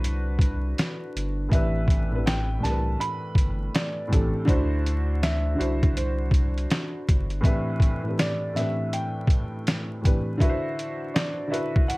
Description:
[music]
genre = lo-fi hip hop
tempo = 81 BPM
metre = 4/4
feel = swing 63% on 16ths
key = A dorian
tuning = A4 = 438 Hz
[part]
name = felt-muted upright piano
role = accompaniment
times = 0.0-12.0 s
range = A2 to C5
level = -29 LUFS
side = equal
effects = low-pass filter
[part]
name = saturated sub bass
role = bass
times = 0.0-7.4 s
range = G1 to D2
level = -27 LUFS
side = equal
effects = none
[part]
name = trip hop sampler-style drum kit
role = drums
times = 0.0-12.0 s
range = hi-hat, kick drum, snare drum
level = -23 LUFS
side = equal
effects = none
[part]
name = dark upright piano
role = melody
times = 1.5-12.0 s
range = C5 to B5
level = -32 LUFS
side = equal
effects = low-pass filter
[sound]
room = light reverb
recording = vinyl crackle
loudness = -22 LUFS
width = side -23 dB against mid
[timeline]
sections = 0.0-12.0 A section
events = none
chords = 0.0 D9; 1.5 Am11; 4.5 D9; 7.4 Am11; 10.4 D9

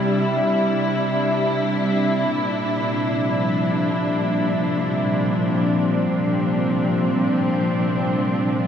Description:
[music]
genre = ambient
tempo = free time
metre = none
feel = none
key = unclear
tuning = A4 = 440 Hz
[part]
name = dark studio string section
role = sustained chords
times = 0.0-8.7 s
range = Bb2 to E4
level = -19 LUFS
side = left 1 dB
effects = shimmer reverb
[part]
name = bowed-like drone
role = drone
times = 0.0-8.7 s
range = C3 to G3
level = -26 LUFS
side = right 2 dB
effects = built-in reverb
[sound]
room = wet echo chamber reverb, RT60 2.1 s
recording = none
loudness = -18 LUFS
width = side -8 dB against mid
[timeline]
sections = 0.0-8.7 A section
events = none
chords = 0.0 Cadd9; 2.4 Bbadd9

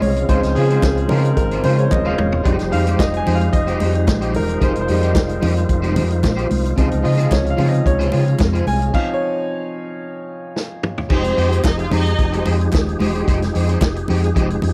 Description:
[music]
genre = disco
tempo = 111 BPM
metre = 4/4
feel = straight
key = F minor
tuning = A4 = 435 Hz
[part]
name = clear concert grand piano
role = accompaniment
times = 0.0-11.1 s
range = C3 to Ab5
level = -24 LUFS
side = equal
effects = none
[part]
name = electric guitar at the edge of break-up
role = accompaniment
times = 0.0-14.7 s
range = Ab3 to C5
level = -28 LUFS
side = equal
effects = ensemble chorus
[part]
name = tonewheel organ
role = sustained chords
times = 0.0-14.7 s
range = C3 to C5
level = -27 LUFS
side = equal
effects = chorus vibrato, fast rotary speaker
[part]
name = overdriven fingered electric bass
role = bass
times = 0.0-14.7 s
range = Eb1 to Db3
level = -22 LUFS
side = equal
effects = none
[part]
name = vintage drum kit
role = drums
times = 0.0-14.7 s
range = crash cymbal, hi-hat, kick drum, snare drum, toms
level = -23 LUFS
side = equal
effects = none
[part]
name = congas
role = percussion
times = 0.0-14.7 s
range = none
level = -27 LUFS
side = equal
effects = none
[part]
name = group handclap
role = percussion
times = 0.8-13.9 s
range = none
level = -35 LUFS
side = equal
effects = none
[part]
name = dark studio string section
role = second line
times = 11.1-12.4 s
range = C4 to F5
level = -25 LUFS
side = equal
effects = none
[sound]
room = small room ambience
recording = dry, close 1970s-style studio recording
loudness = -18 LUFS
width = mono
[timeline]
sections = 0.0-11.1 A section; 11.1-14.7 B section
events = grand piano solo 0.0-11.1; drum fill 1.9-2.5, 10.6-11.1; stop 8.9-11.1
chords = 0.0 Dbmaj7; 2.5 Fm9; 6.8 Dbmaj7; 11.1 Fm9

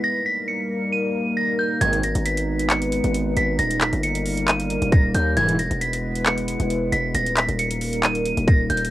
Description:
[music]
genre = hip hop, trap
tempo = 135 BPM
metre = 4/4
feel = half-time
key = unclear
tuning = A4 = 440 Hz
[part]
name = metallic FM bell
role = melody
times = 0.0-8.9 s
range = G6 to D#7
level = -24 LUFS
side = right 1 dB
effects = chorus, low-pass filter, cassette tape, analog delay
[part]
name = dark analog pad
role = sustained chords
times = 0.0-8.9 s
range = G3 to B4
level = -25 LUFS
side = equal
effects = chorus, cassette tape
[part]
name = big bright polysynth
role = stabs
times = 1.8-2.0, 5.4-5.6 s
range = B1 to E3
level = -24 LUFS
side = right 1 dB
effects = chorus, cassette tape
[part]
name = distorted 808-style bass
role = bass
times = 1.8-8.9 s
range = D#1 to D#2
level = -25 LUFS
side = equal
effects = distortion
[part]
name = trap drum kit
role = drums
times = 1.8-8.9 s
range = handclaps, hi-hat, kick drum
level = -21 LUFS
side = equal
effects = cassette tape
[sound]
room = light reverb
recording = home recording on cassette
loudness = -19 LUFS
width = side -15 dB against mid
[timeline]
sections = 0.0-8.9 A section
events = none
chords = 0.0 D#; 1.8 G#m; 3.6 D#; 5.4 E; 7.1 D#

